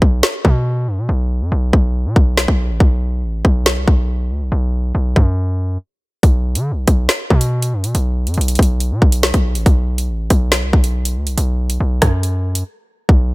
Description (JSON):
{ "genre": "hip hop, drill", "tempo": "140 BPM", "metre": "4/4", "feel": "half-time", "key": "B phrygian", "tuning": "A4 = 438 Hz", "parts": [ { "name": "hard-hitting 808-style bass", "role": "bass", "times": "0.0-13.3 s", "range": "A1 to D3", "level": "-17 LUFS", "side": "equal", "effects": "none" }, { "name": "drill drum kit", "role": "drums", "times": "0.0-13.2 s", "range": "hi-hat, kick drum, rim click, snare drum", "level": "-14 LUFS", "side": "equal", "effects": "none" } ], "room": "digital ambience", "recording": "none", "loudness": "-14 LUFS", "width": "side -22 dB against mid", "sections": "0.0-13.3 A section", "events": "break 0.0-6.2, 12.7-13.1; hi-hats muted 13.1", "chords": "none" }